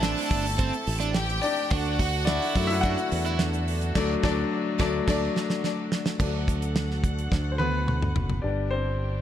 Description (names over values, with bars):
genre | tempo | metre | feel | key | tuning
piano-driven pop | 107 BPM | 4/4 | straight | unclear | A4 = 440 Hz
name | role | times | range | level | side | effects
clear studio violin section | second line | 0.0-5.3 s | D4 to A5 | -32 LUFS | left 1 dB | ping-pong delay
clear baby grand piano | accompaniment | 0.0-9.2 s | E3 to G5 | -29 LUFS | left 4 dB | none
warm chamber string section | sustained chords | 0.0-9.2 s | D3 to F#5 | -38 LUFS | right 3 dB | none
overdriven electric guitar | riff | 0.0-3.4 s | C4 to F#4 | -31 LUFS | right 8 dB | none
fingered electric bass | bass | 0.0-9.2 s | F#1 to F#2 | -28 LUFS | equal | none
damped 70s drum kit | drums | 0.0-8.4 s | crash cymbal, hi-hat, kick drum, snare drum, toms | -29 LUFS | right 1 dB | none
room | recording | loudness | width
light reverb, studio reverb | none | -23 LUFS | side -10 dB against mid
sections
0.0-6.2 A section; 6.2-8.4 B section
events
grand piano solo 0.0-6.2, 6.2-8.4; band accent 4.0-6.2; drum fill 5.1-6.2, 7.3-8.4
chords
0.0 Am; 1.7 D; 8.4 G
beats
0.03 0.59 1.15 | 1.71 2.27 2.83 3.39 | 3.95 4.51 5.07 5.63 | 6.20 6.75 7.32 7.88 | 8.44 9.00